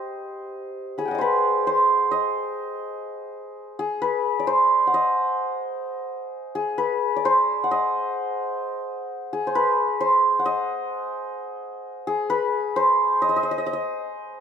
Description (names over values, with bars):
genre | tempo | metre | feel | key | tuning
indian classical | 130 BPM | 3/4 | straight | unclear | A4 = 440 Hz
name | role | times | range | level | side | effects
santur | solo | 0.0-14.4 s | G4 to B5 | -21 LUFS | equal | none
room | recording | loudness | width
light reverb | close, detailed microphones | -20 LUFS | side -7 dB against mid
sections
0.0-10.5 A section; 10.5-14.4 B section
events
none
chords
none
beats
0.30 | 0.76 1.23 1.69 | 2.15 2.62 3.08 | 3.55 4.01 4.47 | 4.94 5.40 5.86 | 6.33 6.79 7.25 | 7.71 8.17 8.63 | 9.09 9.55 10.01 | 10.47 10.93 11.39 | 11.85 12.30 12.76 | 13.22 13.68 14.13